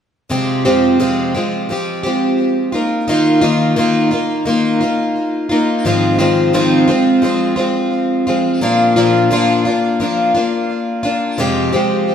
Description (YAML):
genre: rock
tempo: 87 BPM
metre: 4/4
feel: straight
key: F dorian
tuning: A4 = 439 Hz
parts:
  - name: picked plugged-in twelve-string acoustic guitar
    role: solo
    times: 0.3-12.1 s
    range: F2 to G4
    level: -13 LUFS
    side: equal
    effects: digital delay
room: moderate stone room reverb, RT60 1.2 s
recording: band playing live in one room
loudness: -13 LUFS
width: side -8 dB against mid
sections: 0.3-11.4 A section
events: none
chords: 0.3 Fmadd9; 2.7 Ebsus2; 5.9 Ab6; 8.6 Bb; 11.4 Fmadd9